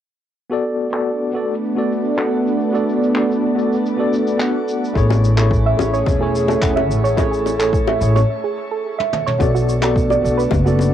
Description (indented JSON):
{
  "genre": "sunset chillout",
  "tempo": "108 BPM",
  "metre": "4/4",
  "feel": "straight",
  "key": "unclear",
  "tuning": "A4 = 440 Hz",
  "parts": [
    { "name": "tine electric piano", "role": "accompaniment", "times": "0.5-10.9 s", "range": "A3 to F#5", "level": "-21 LUFS", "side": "left 1 dB", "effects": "overdrive, medium stereo tremolo, auto-pan, low-pass filter, cassette tape, tape echo, shimmer reverb" },
    { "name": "lush unison pad", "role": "sustained chords", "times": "0.9-10.9 s", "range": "A3 to G#4", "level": "-21 LUFS", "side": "equal", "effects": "chorus, cassette tape, shimmer reverb" },
    { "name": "jazz brush drum kit", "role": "drums", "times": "0.5-10.9 s", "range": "handclaps, shaker, toms, woodblock", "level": "-26 LUFS", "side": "equal", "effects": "low-pass filter on toms, cassette tape, low-pass filter on snare, low-pass filter on perc, low-pass filter on room" },
    { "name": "upright bass", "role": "bass", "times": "5.0-10.9 s", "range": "E1 to B1", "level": "-18 LUFS", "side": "equal", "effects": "none" },
    { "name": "electronic kick drum", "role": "drums", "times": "5.0-10.6 s", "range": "none", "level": "-20 LUFS", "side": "equal", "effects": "cassette tape" },
    { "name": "soft round pluck", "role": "arpeggios", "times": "5.1-10.7 s", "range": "F#4 to E5", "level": "-21 LUFS", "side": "right 6 dB", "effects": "chorus, cassette tape, tape echo, shimmer reverb" },
    { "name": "bongos", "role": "percussion", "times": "5.1-10.9 s", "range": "none", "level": "-24 LUFS", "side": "left 11 dB", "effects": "none" }
  ],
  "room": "wet booth ambience, RT60 0.2 s",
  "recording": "home recording on cassette",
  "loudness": "-15 LUFS",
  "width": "side -10 dB against mid",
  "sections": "0.5-9.4 A section; 9.4-10.9 B section",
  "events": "break 8.3-9.4; drum fill 9.0-9.4",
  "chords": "0.5 Bm7; 5.0 Amaj7; 9.4 Bm7",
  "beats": "| 0.52 1.07 1.63 2.18 | 2.74 3.29 3.85 4.40 | 4.96 5.51 6.07 6.63 | 7.18 7.74 8.29 8.85 | 9.40 9.96 10.52"
}